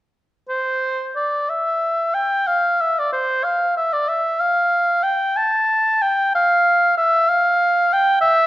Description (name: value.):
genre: classical, baroque-style fantasia for unaccompanied oboe.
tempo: 62 BPM (dotted quarters).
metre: 12/8.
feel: rubato.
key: unclear.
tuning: A4 = 440 Hz.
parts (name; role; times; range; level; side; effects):
warm oboe; solo; 0.5-8.5 s; C5 to A5; -16 LUFS; equal; none.
room: moderate recital hall reverb, RT60 1.5 s.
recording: worn, warbling old tape, cassette tape, warbly pitch drift.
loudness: -16 LUFS.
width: side -15 dB against mid.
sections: 0.5-8.5 A section.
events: none.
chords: none.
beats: | 0.47 1.47 2.46 3.42 | 4.38 5.35 6.31 7.28 | 8.22.